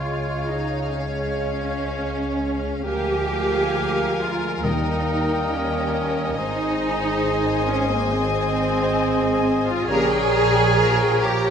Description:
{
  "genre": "classical, slow romantic movement for symphony orchestra",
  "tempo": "68 BPM",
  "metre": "4/4",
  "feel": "rubato",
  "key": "Ab major",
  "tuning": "A4 = 440 Hz",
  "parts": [
    { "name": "rich chamber violin section", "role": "melody", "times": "0.0-11.5 s", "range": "F5 to Bb5", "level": "-33 LUFS", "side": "left 7 dB", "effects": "none" },
    { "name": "mellow hollow silver concert flute", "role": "second line", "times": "0.0-11.5 s", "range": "F5 to Bb5", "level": "-32 LUFS", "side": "left 2 dB", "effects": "none" },
    { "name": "rich chamber violin section", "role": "second line", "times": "0.0-11.5 s", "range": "Bb4 to F5", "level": "-32 LUFS", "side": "left 4 dB", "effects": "none" },
    { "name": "warm clarinet", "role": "second line", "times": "0.0-11.5 s", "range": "Bb4 to Db5", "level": "-31 LUFS", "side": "left 1 dB", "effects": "none" },
    { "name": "warm oboe", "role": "second line", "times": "0.0-11.5 s", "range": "Db5 to F5", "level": "-31 LUFS", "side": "equal", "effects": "none" },
    { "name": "rich chamber viola section", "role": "accompaniment", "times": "0.0-11.5 s", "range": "Bb3 to Ab4", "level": "-28 LUFS", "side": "left 1 dB", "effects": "none" },
    { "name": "warm bassoon", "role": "accompaniment", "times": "0.0-11.5 s", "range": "F3 to Bb3", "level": "-31 LUFS", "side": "left 2 dB", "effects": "none" },
    { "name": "mellow French horn section", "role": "sustained chords", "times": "0.0-10.2 s", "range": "Bb3 to Bb4", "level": "-32 LUFS", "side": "left 4 dB", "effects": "none" },
    { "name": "warm trombone section", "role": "sustained chords", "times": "0.0-10.2 s", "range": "Db3 to Bb3", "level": "-31 LUFS", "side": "right 2 dB", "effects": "none" },
    { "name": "rich chamber cello section", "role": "bass", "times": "0.0-11.5 s", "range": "Bb3 to Ab4", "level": "-25 LUFS", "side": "right 3 dB", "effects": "none" },
    { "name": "rich chamber double bass section", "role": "bass", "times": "0.0-11.5 s", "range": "Ab1 to Eb2", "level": "-28 LUFS", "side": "right 2 dB", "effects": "none" },
    { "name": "timpani", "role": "percussion", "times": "4.6-5.9 s", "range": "Eb3", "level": "-28 LUFS", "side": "left 1 dB", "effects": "none" }
  ],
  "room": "moderate scoring stage reverb, RT60 1.6 s",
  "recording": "none",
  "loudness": "-19 LUFS",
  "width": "side -7 dB against mid",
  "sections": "0.0-11.5 A section",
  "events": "none",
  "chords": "0.0 Db; 2.9 Bb7/D; 4.6 Eb; 6.4 Ab; 9.9 Gdim/Bb",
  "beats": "0.07 0.95 1.86 | 2.86 3.77 4.64 5.52 | 6.38 7.24 8.12 9.00 | 9.88 10.77"
}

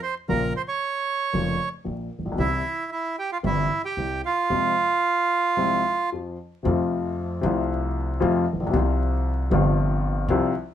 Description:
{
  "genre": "tango",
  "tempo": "114 BPM",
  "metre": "4/4",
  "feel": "rubato",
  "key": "F harmonic minor, F major from 6.7 s",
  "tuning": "A4 = 440 Hz",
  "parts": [
    { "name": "bandoneon", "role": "melody", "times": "0.0-6.1 s", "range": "E4 to Db5", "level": "-23 LUFS", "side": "right 4 dB", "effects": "none" },
    { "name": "dark upright piano", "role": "accompaniment", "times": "0.3-10.5 s", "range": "F1 to F4", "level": "-24 LUFS", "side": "left 3 dB", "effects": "none" },
    { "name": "upright bass", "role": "bass", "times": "0.3-10.5 s", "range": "F1 to F2", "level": "-26 LUFS", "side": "equal", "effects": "none" }
  ],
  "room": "light reverb",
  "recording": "minimal, uncompressed stereo recording, vinyl crackle",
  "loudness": "-22 LUFS",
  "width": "side -10 dB against mid",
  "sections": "0.0-6.7 A section; 6.7-10.7 B section",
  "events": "break 5.6-6.7",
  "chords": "0.3 Bbm; 2.4 C; 4.5 Fm; 6.7 F; 8.8 Csus4",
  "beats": "| 0.29 0.81 1.34 1.86 | 2.39 2.91 3.44 3.97 | 4.51 5.04 5.58 6.13 | 6.67 7.19 7.72 8.23 | 8.75 9.27 9.78 10.30"
}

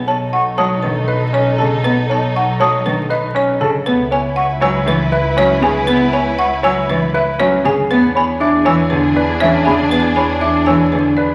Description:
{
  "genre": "classical, minimalist pattern music",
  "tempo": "119 BPM",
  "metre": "4/4",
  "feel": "straight",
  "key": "unclear",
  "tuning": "A4 = 440 Hz",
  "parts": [
    { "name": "folk marimba with hard mallets", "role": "melody", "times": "0.0-11.3 s", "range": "B4 to A5", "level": "-22 LUFS", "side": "equal", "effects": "none" },
    { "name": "warm symphonic violin section", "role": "sustained chords", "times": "0.0-11.3 s", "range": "D4 to B4", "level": "-24 LUFS", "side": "equal", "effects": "none" },
    { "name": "warm symphonic double bass section", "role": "bass", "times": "0.0-11.3 s", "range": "B1 to E2", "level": "-24 LUFS", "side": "equal", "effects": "none" },
    { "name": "concert flute", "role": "arpeggios", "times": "0.1-10.8 s", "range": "E5 to E6", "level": "-24 LUFS", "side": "equal", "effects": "none" },
    { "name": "warm concert grand piano", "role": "arpeggios", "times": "0.1-11.3 s", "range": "C#4 to C#5", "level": "-22 LUFS", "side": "equal", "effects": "none" },
    { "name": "dark cello", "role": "accompaniment", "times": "0.6-11.1 s", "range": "C#3 to B3", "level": "-21 LUFS", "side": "equal", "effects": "none" }
  ],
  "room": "wet recital hall reverb, RT60 1.3 s",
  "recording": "vinyl crackle",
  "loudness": "-15 LUFS",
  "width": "mono",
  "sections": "0.0-11.3 A section",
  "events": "none",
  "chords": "0.0 B7; 3.9 C#m7; 7.9 E7",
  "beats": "0.34 0.84 1.34 | 1.85 2.35 2.86 3.36 | 3.86 4.37 4.87 5.38 | 5.88 6.38 6.89 7.39 | 7.90 8.40 8.91 9.41 | 9.91 10.42 10.92"
}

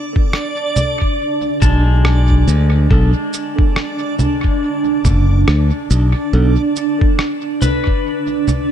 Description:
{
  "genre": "ambient dub",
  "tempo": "70 BPM",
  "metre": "4/4",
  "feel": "swing 59% on 16ths",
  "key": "B dorian",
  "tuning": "A4 = 438 Hz",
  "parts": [
    { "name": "granular cloud pad", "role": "sustained chords", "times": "0.0-8.7 s", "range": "D4", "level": "-20 LUFS", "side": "right 2 dB", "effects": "built-in reverb" },
    { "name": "backwards swelling texture", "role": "texture", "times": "0.0-8.7 s", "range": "D5", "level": "-26 LUFS", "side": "right 2 dB", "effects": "built-in reverb" },
    { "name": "electronic kick drum", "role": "drums", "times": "0.2-8.0 s", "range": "none", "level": "-15 LUFS", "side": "equal", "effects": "none" },
    { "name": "electronic rim click, congas and cabasa", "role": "drums", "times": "0.3-8.7 s", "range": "none", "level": "-21 LUFS", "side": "right 1 dB", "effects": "dub echo" },
    { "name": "pedal steel guitar", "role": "arpeggios", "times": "1.6-8.7 s", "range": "G#3 to A5", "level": "-27 LUFS", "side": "left 6 dB", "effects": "dub echo" },
    { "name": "modern bright fingered electric bass", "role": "bass", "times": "1.6-6.6 s", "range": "F#1 to D2", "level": "-12 LUFS", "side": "equal", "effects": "none" },
    { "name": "mellow tine electric piano", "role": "stabs", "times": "2.9-6.5 s", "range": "B3 to A4", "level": "-28 LUFS", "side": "right 3 dB", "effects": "dub echo" }
  ],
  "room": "light reverb, digital ambience",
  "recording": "echo-heavy mix",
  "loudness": "-13 LUFS",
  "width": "side -10 dB against mid",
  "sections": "0.0-8.7 A section",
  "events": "kick drops out 8.0-8.7",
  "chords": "0.0 Bm7",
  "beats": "0.34 1.19 2.05 | 2.91 3.76 4.62 5.48 | 6.33 7.19 8.05"
}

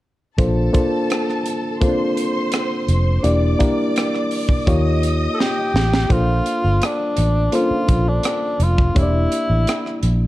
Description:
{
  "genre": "lush 1970s-style soul",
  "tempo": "84 BPM",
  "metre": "4/4",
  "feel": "straight",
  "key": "Bb major",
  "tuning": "A4 = 440 Hz",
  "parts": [
    { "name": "clear studio string section", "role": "second line", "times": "0.4-6.1 s", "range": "A4 to Eb6", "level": "-27 LUFS", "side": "right 1 dB", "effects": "none" },
    { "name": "reed electric piano", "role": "accompaniment", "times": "0.4-10.3 s", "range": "Bb3 to D5", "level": "-21 LUFS", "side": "left 1 dB", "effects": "none" },
    { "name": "vintage muted fingered electric bass", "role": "bass", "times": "0.4-10.3 s", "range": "E1 to Eb2", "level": "-18 LUFS", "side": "equal", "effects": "none" },
    { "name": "tight funk drum kit", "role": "drums", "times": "0.4-10.2 s", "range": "hi-hat, kick drum, rim click, snare drum", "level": "-21 LUFS", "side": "equal", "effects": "none" },
    { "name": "breathy tenor saxophone", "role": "melody", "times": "5.3-10.3 s", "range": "D4 to A4", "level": "-22 LUFS", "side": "equal", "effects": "none" }
  ],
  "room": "light reverb, small room ambience",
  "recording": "dark, warm production",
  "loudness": "-16 LUFS",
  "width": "side -16 dB against mid",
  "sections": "0.4-6.1 A section; 6.1-10.3 B section",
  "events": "drum fill 5.4-6.1",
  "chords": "0.4 Bbmaj9; 3.2 Em7b5; 4.7 Eb9; 6.1 Bbmaj9; 9.0 Em7b5",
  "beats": "| 0.38 1.10 1.81 2.52 | 3.24 3.96 4.67 5.38 | 6.10 6.81 7.53 8.24 | 8.96 9.67"
}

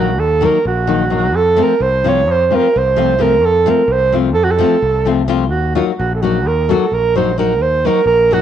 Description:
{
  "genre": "balkan folk, Balkan wedding band",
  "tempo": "259 BPM (eighths)",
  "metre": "9/8",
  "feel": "straight",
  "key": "Eb dorian sharp4",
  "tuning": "A4 = 440 Hz",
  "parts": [
    { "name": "warm alto saxophone", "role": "melody", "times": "0.0-8.4 s", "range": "F4 to Db5", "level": "-14 LUFS", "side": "right 4 dB", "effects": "plate reverb" },
    { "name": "nylon-string guitar", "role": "accompaniment", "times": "0.0-8.4 s", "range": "Eb3 to Gb4", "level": "-17 LUFS", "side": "left 9 dB", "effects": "cassette tape" },
    { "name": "growling fingered electric bass", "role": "bass", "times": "0.0-8.4 s", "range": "Bb1 to F2", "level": "-18 LUFS", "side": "left 1 dB", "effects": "overdrive" }
  ],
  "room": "wet studio reverb, RT60 0.7 s",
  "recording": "home recording on cassette",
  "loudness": "-12 LUFS",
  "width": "side -10 dB against mid",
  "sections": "0.0-8.4 A section",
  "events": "none",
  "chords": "0.0 Ebm; 1.3 F; 5.5 Ebm",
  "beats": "0.16 0.39 0.63 0.86 1.09 | 1.32 1.56 1.79 2.02 2.25 2.48 2.72 2.95 3.18 | 3.41 3.64 3.88 4.11 4.34 4.57 4.80 5.03 5.27 | 5.50 5.73 5.96 6.19 6.42 6.66 6.89 7.12 7.35 | 7.58 7.82 8.05 8.28"
}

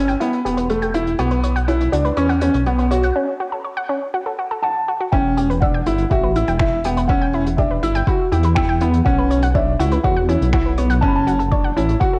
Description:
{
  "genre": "piano and strings electronica",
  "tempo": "122 BPM",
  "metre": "4/4",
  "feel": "straight",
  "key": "E dorian",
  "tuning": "A4 = 442 Hz",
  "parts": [
    { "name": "analog pluck", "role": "arpeggios", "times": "0.0-12.2 s", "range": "C#4 to G5", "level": "-27 LUFS", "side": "equal", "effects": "chorus, vintage 12-bit sampler grit, sidechain pumping, cassette tape, analog delay" },
    { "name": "warm upright piano", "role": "riff", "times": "0.0-12.2 s", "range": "A3 to F#4", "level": "-22 LUFS", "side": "equal", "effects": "cassette tape, analog delay" },
    { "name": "dark detuned saw bass", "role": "bass", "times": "0.0-12.0 s", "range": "E1 to E2", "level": "-23 LUFS", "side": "equal", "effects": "tube saturation, sidechain pumping" },
    { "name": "vintage brush drum kit", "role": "drums", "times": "0.1-12.1 s", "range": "finger snaps, hi-hat", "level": "-36 LUFS", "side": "equal", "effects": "high-pass filter on hats, high-pass filter on snare, high-pass filter on room" },
    { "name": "felt-muted upright piano", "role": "melody", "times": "4.6-12.2 s", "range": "E5 to B5", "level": "-27 LUFS", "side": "equal", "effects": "cassette tape" },
    { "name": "electronic kick drum", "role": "drums", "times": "5.1-12.1 s", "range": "none", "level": "-22 LUFS", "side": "equal", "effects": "overdrive" }
  ],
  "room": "moderate digital room reverb, RT60 1.0 s, small room reverb",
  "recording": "home recording on cassette",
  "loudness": "-18 LUFS",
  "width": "mono",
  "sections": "0.0-5.1 A section; 5.1-12.2 B section",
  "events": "build-up 0.0-5.1; break 3.2-5.1; drop 5.1-12.2",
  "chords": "0.0 Em; 1.2 Bsus2; 3.2 F#m; 5.1 Em; 9.1 Bsus2; 11.0 F#m",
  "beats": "0.21 0.70 | 1.19 1.68 2.17 2.67 | 3.16 3.65 4.14 4.63 | 5.12 5.62 6.11 6.60 | 7.09 7.58 8.07 8.57 | 9.06 9.55 10.04 10.53 | 11.03 11.52 12.01"
}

